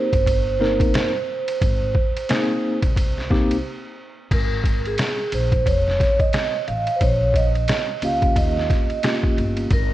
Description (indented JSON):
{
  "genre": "hip hop, jazz-hop",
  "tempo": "89 BPM",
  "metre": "4/4",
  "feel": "swing 59% on 16ths",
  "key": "Ab major",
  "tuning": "A4 = 440 Hz",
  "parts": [
    { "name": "vibraphone with soft mallets", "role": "melody", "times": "0.0-9.9 s", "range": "Ab4 to F5", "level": "-23 LUFS", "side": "right 3 dB", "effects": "tape echo" },
    { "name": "tine electric piano", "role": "accompaniment", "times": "0.0-3.6, 8.0-9.7 s", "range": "Bb3 to Bb4", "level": "-24 LUFS", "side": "left 2 dB", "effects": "medium tremolo" },
    { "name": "upright bass", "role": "bass", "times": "0.1-9.9 s", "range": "F1 to Eb2", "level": "-24 LUFS", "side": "equal", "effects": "none" },
    { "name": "trip hop sampler-style drum kit", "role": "drums", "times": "0.1-9.9 s", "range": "crash cymbal, hi-hat, kick drum, ride cymbal, snare drum", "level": "-21 LUFS", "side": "equal", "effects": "none" }
  ],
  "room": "light reverb",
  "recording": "worn, warbling old tape, cassette tape, warbly pitch drift, nothing above 10.8 kHz",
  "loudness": "-18 LUFS",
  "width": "side -14 dB against mid",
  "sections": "0.0-4.3 A section; 4.3-9.9 B section",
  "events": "break 3.6-4.3",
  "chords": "0.0 Abmaj9; 4.3 Absus2; 5.7 F7b13; 7.0 Bbm; 8.4 Eb7"
}